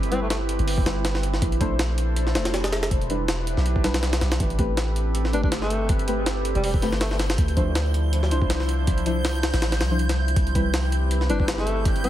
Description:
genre	drum and bass, jungle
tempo	161 BPM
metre	4/4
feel	swing 55% on 16ths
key	A minor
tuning	A4 = 441 Hz
part	warbly tape-like pad	sustained chords	0.0-12.1 s	F3 to C5	-31 LUFS	right 1 dB	chorus, built-in reverb
part	deep mellow chord stab	stabs	0.0-12.1 s	F3 to C5	-30 LUFS	left 2 dB	chorus, dub echo
part	long sustained 808-style bass	bass	0.0-12.1 s	E1 to D2	-24 LUFS	equal	none
part	jungle sampler-style drum kit	drums	0.0-12.1 s	hi-hat, kick drum, snare drum	-25 LUFS	equal	overdrive
part	breathy tenor saxophone	melody	0.1-0.4, 5.3-7.2, 11.3-12.1 s	G3 to D4	-32 LUFS	equal	dub echo
part	backwards swelling texture	texture	5.6-12.1 s	G6	-35 LUFS	right 3 dB	built-in reverb
room	light reverb, digital ambience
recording	heavily compressed radio sound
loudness	-20 LUFS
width	side -12 dB against mid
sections	0.0-4.4 A section; 4.4-12.1 A section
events	drop 0.0-4.4, 4.4-12.1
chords	0.0 Cmaj7; 1.4 Bbmaj9#11; 2.9 Em7; 4.4 Am9; 7.4 Dm9; 10.4 Cmaj7

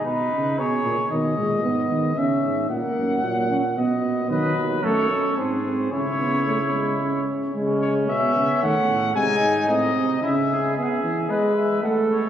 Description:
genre	classical, imitative canzona for brass ensemble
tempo	112 BPM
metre	3/4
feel	straight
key	C# minor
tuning	A4 = 441 Hz
part	mellow trumpet	melody	0.0-12.3 s	B4 to G#5	-25 LUFS	left 2 dB	none
part	clear flugelhorn	second line	0.0-1.1, 4.3-12.3 s	C#4 to B4	-27 LUFS	right 2 dB	none
part	mellow tuba	bass	0.1-10.8 s	D#2 to D#3	-27 LUFS	right 2 dB	none
part	dark trombone	accompaniment	1.1-12.3 s	D#3 to C#4	-24 LUFS	right 1 dB	none
room	wet cathedral reverb, RT60 4.3 s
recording	recorded on a phone in the room, studio reverb, compression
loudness	-20 LUFS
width	side -10 dB against mid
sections	0.0-7.6 A section; 7.6-10.8 B section; 10.8-12.3 C section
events	none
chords	0.0 G#m (rootless); 0.6 G#m/B; 1.1 G#m; 2.2 C#m; 2.7 F#; 3.8 B; 4.3 D#dim; 5.4 G#; 5.9 C#m; 8.6 D#dim; 9.2 G#; 10.2 C#m; 10.8 E

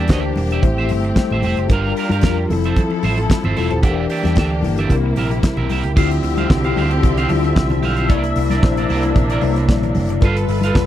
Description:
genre	disco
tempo	113 BPM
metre	4/4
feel	straight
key	D minor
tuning	A4 = 440 Hz
part	electric guitar at the edge of break-up	accompaniment	0.0-10.8 s	E4 to F5	-25 LUFS	right 7 dB	none
part	mellow tine electric piano	accompaniment	0.0-10.9 s	C3 to G5	-21 LUFS	left 4 dB	medium stereo tremolo
part	clear studio string section	sustained chords	0.0-10.9 s	C3 to E5	-24 LUFS	left 1 dB	none
part	picked electric bass with an envelope filter	bass	0.0-10.9 s	Eb1 to G2	-20 LUFS	right 1 dB	none
part	damped 70s drum kit	drums	0.1-10.9 s	crash cymbal, hi-hat, kick drum, snare drum	-16 LUFS	right 1 dB	none
part	congas	percussion	0.1-10.7 s	none	-26 LUFS	left 4 dB	none
room	little or no reverb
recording	dry, close 1970s-style studio recording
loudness	-15 LUFS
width	side -12 dB against mid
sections	0.0-6.0 A section; 6.0-10.9 B section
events	tine electric piano fill 0.1-1.7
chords	0.0 Em7b5; 0.6 Am7; 1.7 Gm7; 2.5 Fmaj7; 3.8 Em7b5; 4.9 C7; 6.0 Dm11; 8.1 C9; 10.2 G9

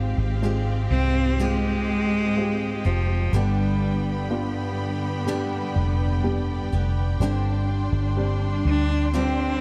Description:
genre	pop ballad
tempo	62 BPM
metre	4/4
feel	straight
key	unclear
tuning	A4 = 440 Hz
part	clear studio cello section	second line	0.0-9.6 s	G2 to G4	-33 LUFS	equal	none
part	dark baby grand piano	accompaniment	0.0-9.6 s	G2 to G4	-33 LUFS	equal	none
part	rich studio string section	sustained chords	0.0-9.6 s	D5 to C6	-38 LUFS	equal	none
part	picked steel-string acoustic guitar	arpeggios	0.0-9.6 s	G2 to G4	-36 LUFS	equal	none
part	vintage muted fingered electric bass	bass	0.0-9.6 s	F1 to D2	-26 LUFS	equal	none
part	clear cello	melody	0.9-9.6 s	F3 to D4	-28 LUFS	equal	none
room	little or no reverb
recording	dry, close 1970s-style studio recording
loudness	-24 LUFS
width	mono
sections	0.0-9.6 A section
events	none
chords	0.0 Fmadd9/Ab; 3.3 G; 7.2 Gsus4

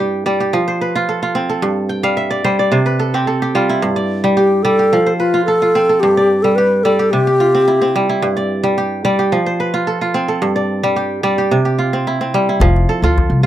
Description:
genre	west african traditional, West African string and xylophone music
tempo	109 BPM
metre	4/4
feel	straight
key	F lydian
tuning	A4 = 440 Hz
part	kora	arpeggios	0.0-13.5 s	G2 to G5	-15 LUFS	right 1 dB	none
part	wooden-headed alto flute	melody	4.4-7.9, 13.4-13.5 s	F4 to B4	-12 LUFS	left 1 dB	none
part	upright bass	bass	12.6-13.5 s	F1 to D2	-14 LUFS	left 1 dB	none
part	djembe	percussion	12.6-13.3 s	none	-17 LUFS	left 2 dB	none
room	light reverb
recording	dry, close 1970s-style studio recording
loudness	-13 LUFS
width	side -12 dB against mid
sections	0.0-12.6 A section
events	kora fill 1.9-3.8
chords	0.0 G5; 0.5 F; 1.6 G13sus4; 2.7 C5; 3.8 G5; 4.9 F; 6.0 G5; 7.1 C; 8.2 G5; 9.3 F; 10.4 G5; 11.5 C; 12.6 F

